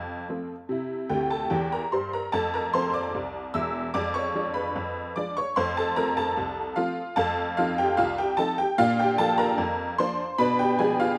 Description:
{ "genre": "ragtime piano", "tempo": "74 BPM", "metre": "2/4", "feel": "straight", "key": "F major", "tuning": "A4 = 440 Hz", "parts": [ { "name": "honky-tonk upright piano", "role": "solo", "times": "0.0-11.2 s", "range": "E1 to E6", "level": "-26 LUFS", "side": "equal", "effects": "none" } ], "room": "light reverb, studio ambience", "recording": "rough home demo mix", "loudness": "-26 LUFS", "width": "mono", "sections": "0.0-11.2 A section", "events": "honky-tonk piano fill 1.1-2.3", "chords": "0.0 F; 0.7 C; 2.3 F; 3.9 Fdim7; 5.6 F; 7.2 F7; 8.8 Bb; 10.4 Bdim7", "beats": "| 0.69 1.51 | 2.32 3.14 | 3.94 4.75 | 5.56 6.37 | 7.17 7.98 | 8.79 9.59 | 10.39" }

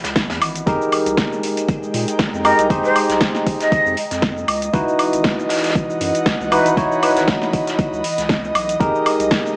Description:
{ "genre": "deep house", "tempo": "118 BPM", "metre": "4/4", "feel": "swing 55% on 16ths", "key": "unclear", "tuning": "A4 = 440 Hz", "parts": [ { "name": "round analog bass", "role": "bass", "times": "0.0-9.3 s", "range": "Ab1 to Bb2", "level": "-28 LUFS", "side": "equal", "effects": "sidechain pumping" }, { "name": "deep house drum kit", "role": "drums", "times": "0.0-9.5 s", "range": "hi-hat, shaker, snare drum, woodblock", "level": "-21 LUFS", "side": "equal", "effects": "overdrive" }, { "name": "loose indie drum kit", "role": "drums", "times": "0.0-9.5 s", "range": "hi-hat, snare drum", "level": "-29 LUFS", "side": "equal", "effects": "sidechain pumping on hats, high-pass filter on hats, high-pass filter on snare, high-pass filter on room" }, { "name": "airy breathy pad", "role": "texture", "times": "0.0-9.6 s", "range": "Fb3 to Cb6", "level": "-23 LUFS", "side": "right 1 dB", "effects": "chorus, sidechain pumping" }, { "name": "electronic kick drum", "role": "drums", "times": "0.2-9.4 s", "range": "none", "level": "-22 LUFS", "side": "equal", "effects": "overdrive" }, { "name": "barky tine electric piano", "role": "stabs", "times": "0.7-9.6 s", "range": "Eb4 to Db5", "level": "-19 LUFS", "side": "equal", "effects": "vintage 12-bit sampler grit, sidechain pumping" }, { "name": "breathy mellow jazz flute", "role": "melody", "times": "2.4-7.2 s", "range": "Cb5 to Eb5", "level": "-20 LUFS", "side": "equal", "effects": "none" } ], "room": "moderate plate reverb, RT60 1.6 s, small room ambience", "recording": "vinyl crackle, small speaker sound", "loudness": "-15 LUFS", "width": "side -27 dB against mid", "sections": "0.0-9.6 A section", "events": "none", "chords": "0.0 Dbm11; 0.7 Fm11; 4.5 Dbm11; 8.8 Fm11", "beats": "0.16 | 0.67 1.18 1.69 2.19 | 2.70 3.21 3.72 4.23 | 4.74 5.25 5.75 6.26 | 6.77 7.28 7.79 8.30 | 8.80 9.31" }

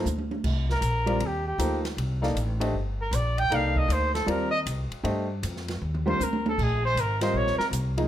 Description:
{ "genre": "modal jazz", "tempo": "156 BPM", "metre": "4/4", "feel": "swing 65% on 8ths", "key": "G minor", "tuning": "A4 = 440 Hz", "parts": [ { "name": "clear baby grand piano", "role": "accompaniment", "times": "0.0-8.1 s", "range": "F3 to F5", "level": "-29 LUFS", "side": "equal", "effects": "none" }, { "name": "upright bass", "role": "bass", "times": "0.0-8.1 s", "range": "G1 to G2", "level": "-28 LUFS", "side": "equal", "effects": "none" }, { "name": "open jazz drum kit", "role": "drums", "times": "0.1-8.0 s", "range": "crash cymbal, hi-hat, kick drum, ride cymbal, snare drum, toms", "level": "-34 LUFS", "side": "right 2 dB", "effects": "none" }, { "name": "mellow trumpet", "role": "melody", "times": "0.7-7.7 s", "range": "G4 to G5", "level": "-27 LUFS", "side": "equal", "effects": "plate reverb" } ], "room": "light reverb", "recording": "none", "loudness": "-24 LUFS", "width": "side -11 dB against mid", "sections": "0.0-6.6 A section; 6.6-8.1 A section", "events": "trumpet solo 0.0-8.1; drum fill 0.1-0.4, 5.8-6.6", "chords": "0.0 Gm9; 6.6 Bb9sus4", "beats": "0.06 | 0.44 0.82 1.21 1.59 | 1.97 2.35 2.74 3.12 | 3.50 3.89 4.27 4.66 | 5.04 5.42 5.80 6.19 | 6.57 6.96 7.34 7.72" }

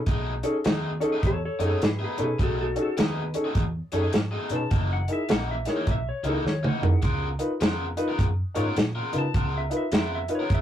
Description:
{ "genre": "electric blues shuffle", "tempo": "104 BPM", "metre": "4/4", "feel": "swing 63% on 8ths", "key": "unclear", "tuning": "A4 = 440 Hz", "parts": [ { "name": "overdriven electric guitar", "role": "riff", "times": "0.1-10.6 s", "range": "F#2 to A#4", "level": "-32 LUFS", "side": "left 1 dB", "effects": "none" }, { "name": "vintage muted fingered electric bass", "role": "bass", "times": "0.1-10.6 s", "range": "F#1 to C#3", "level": "-30 LUFS", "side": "equal", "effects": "none" }, { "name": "warm soul drum kit", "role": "drums", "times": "0.1-10.6 s", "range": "hi-hat, kick drum, snare drum, toms", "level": "-24 LUFS", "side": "equal", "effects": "none" }, { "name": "clear upright piano", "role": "accompaniment", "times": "0.4-10.4 s", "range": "C#4 to C#5", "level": "-27 LUFS", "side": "left 1 dB", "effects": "none" }, { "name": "clean lap steel guitar", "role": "melody", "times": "1.3-10.6 s", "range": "F#4 to A5", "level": "-32 LUFS", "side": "left 1 dB", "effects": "none" } ], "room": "wet booth ambience, RT60 0.2 s", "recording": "rough rehearsal-room recording, warm saturation", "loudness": "-23 LUFS", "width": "side -10 dB against mid", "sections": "0.0-10.6 A section", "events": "electric slide guitar solo 0.0-10.6; drum fill 6.5-7.0", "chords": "0.0 B13; 4.7 F#13; 7.0 C#13", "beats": "| 0.08 0.66 1.24 1.82 | 2.40 2.98 3.56 4.14 | 4.72 5.30 5.88 6.46 | 7.04 7.61 8.19 8.77 | 9.35 9.93 10.51" }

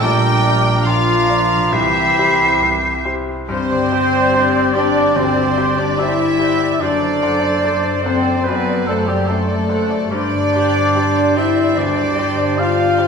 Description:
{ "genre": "cinematic, emotional film score for orchestra", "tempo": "72 BPM", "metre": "4/4", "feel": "rubato", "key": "unclear", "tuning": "A4 = 439 Hz", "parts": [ { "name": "warm studio violin section", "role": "melody", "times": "0.0-13.1 s", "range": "D5 to G5", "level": "-26 LUFS", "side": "left 3 dB", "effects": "none" }, { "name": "bright clarinet", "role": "second line", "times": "0.0-13.1 s", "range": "E4 to C5", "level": "-23 LUFS", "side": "right 2 dB", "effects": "none" }, { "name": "clear studio violin section", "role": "second line", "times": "0.0-13.1 s", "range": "G4 to G5", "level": "-27 LUFS", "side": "left 1 dB", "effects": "none" }, { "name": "mellow oboe", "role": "second line", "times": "0.0-13.1 s", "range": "G4 to F5", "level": "-22 LUFS", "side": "right 3 dB", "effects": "none" }, { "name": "silver concert flute", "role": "second line", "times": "0.0-13.1 s", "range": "D5 to C7", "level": "-24 LUFS", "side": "left 1 dB", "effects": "none" }, { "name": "clear grand piano", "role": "accompaniment", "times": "0.0-13.1 s", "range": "Bb1 to D5", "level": "-25 LUFS", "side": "left 2 dB", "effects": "none" }, { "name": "dark studio viola section", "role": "accompaniment", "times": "0.0-13.1 s", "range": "C4 to G5", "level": "-26 LUFS", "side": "left 1 dB", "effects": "none" }, { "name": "mellow French horn section", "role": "sustained chords", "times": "0.0-13.1 s", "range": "E3 to F4", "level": "-18 LUFS", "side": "left 2 dB", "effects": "none" }, { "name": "concert harp", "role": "arpeggios", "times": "0.0-13.1 s", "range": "F#2 to D6", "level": "-29 LUFS", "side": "left 4 dB", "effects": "none" }, { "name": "dark studio double bass section", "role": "bass", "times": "0.0-13.1 s", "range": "F#1 to C2", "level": "-25 LUFS", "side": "right 3 dB", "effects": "none" }, { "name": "warm studio cello section", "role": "bass", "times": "0.0-13.1 s", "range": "F#2 to G3", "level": "-27 LUFS", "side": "right 2 dB", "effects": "none" } ], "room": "wet scoring stage reverb, RT60 1.7 s", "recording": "minimal, uncompressed stereo recording", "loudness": "-14 LUFS", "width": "side -6 dB against mid", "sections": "0.0-3.5 A section; 3.5-13.1 B section", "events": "none", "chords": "0.0 Bb; 1.7 C; 3.5 Gsus4; 6.8 D7/F#; 10.1 Gsus4", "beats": "| 0.03 0.87 1.74 2.62 | 3.49 4.33 5.15 5.98 | 6.81 7.63 8.46 9.28 | 10.12 10.96 11.77 12.58" }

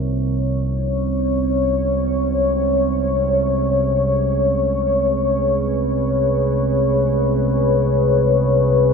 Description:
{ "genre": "ambient", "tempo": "free time", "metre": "none", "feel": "none", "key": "unclear", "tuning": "A4 = 440 Hz", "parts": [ { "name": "deep dark ambient pad", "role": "sustained chords", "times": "0.0-8.9 s", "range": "Eb4 to Db5", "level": "-18 LUFS", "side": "left 3 dB", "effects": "chorus, built-in reverb" }, { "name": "deep rumbling drone", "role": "drone", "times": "0.0-8.9 s", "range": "C2 to C3", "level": "-20 LUFS", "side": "right 2 dB", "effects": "built-in reverb" } ], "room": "wet spring reverb, RT60 2.4 s", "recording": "none", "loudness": "-16 LUFS", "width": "side -5 dB against mid", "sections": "0.0-8.9 A section", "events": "none", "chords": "0.0 Abm", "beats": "free time" }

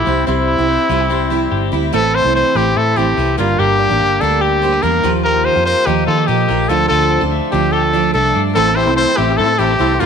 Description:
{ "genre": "indie pop", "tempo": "145 BPM", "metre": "4/4", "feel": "straight", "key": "unclear", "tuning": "A4 = 440 Hz", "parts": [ { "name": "bright trumpet", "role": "melody", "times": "0.0-10.1 s", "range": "E4 to C5", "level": "-15 LUFS", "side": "left 1 dB", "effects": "slapback echo" }, { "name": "picked steel-string acoustic guitar", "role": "accompaniment", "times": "0.0-10.1 s", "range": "G2 to A4", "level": "-19 LUFS", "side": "right 11 dB", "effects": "none" }, { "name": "twelve-string electric guitar", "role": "arpeggios", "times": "0.0-10.1 s", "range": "E3 to A4", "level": "-21 LUFS", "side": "left 12 dB", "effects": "slapback echo" }, { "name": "vintage muted fingered electric bass", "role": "bass", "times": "0.0-10.1 s", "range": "G1 to Eb3", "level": "-20 LUFS", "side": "equal", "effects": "none" }, { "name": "overdriven combo organ", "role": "accompaniment", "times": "8.6-10.1 s", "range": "C4 to Bb4", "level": "-21 LUFS", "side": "left 12 dB", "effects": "none" } ], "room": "moderate echo chamber reverb, RT60 2.2 s", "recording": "1960s-style stereo with parts hard left and right", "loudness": "-12 LUFS", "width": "side -6 dB against mid", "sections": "0.0-1.9 A section; 1.9-10.1 B section", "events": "none", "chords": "0.1 C; 1.9 Am; 3.4 Gm; 5.0 Ebadd9; 6.7 Dm; 8.6 Am", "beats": "| 0.27 0.69 1.10 1.52 | 1.93 2.35 2.76 3.18 | 3.59 4.00 4.42 4.83 | 5.25 5.66 6.08 6.49 | 6.90 7.32 7.73 8.15 | 8.56 8.97 9.39 9.80" }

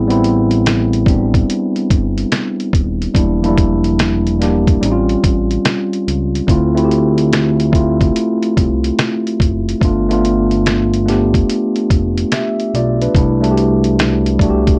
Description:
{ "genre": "lo-fi hip hop", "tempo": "72 BPM", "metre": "4/4", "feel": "swing 66% on 16ths", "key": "A minor", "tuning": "A4 = 441 Hz", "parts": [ { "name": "mellow tine electric piano", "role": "accompaniment", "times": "0.0-14.8 s", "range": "F3 to E5", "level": "-17 LUFS", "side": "equal", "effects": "low-pass filter" }, { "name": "fat analog bass", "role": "bass", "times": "0.0-14.8 s", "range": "D#1 to D2", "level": "-20 LUFS", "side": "equal", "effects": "none" }, { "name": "lo-fi sampler-style drum kit", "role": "drums", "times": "0.1-14.8 s", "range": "hi-hat, kick drum, snare drum", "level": "-18 LUFS", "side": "equal", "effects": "none" } ], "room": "light reverb", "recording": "dry, gritty hardware recording", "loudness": "-15 LUFS", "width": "mono", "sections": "0.0-14.8 A section", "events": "none", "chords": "0.0 Am9; 3.1 Em7b5; 4.8 A7alt; 6.5 Dm9; 9.8 G9; 13.1 C69", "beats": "0.65 1.48 2.31 | 3.15 3.98 4.82 5.65 | 6.48 7.32 8.15 8.98 | 9.81 10.65 11.48 12.31 | 13.15 13.98" }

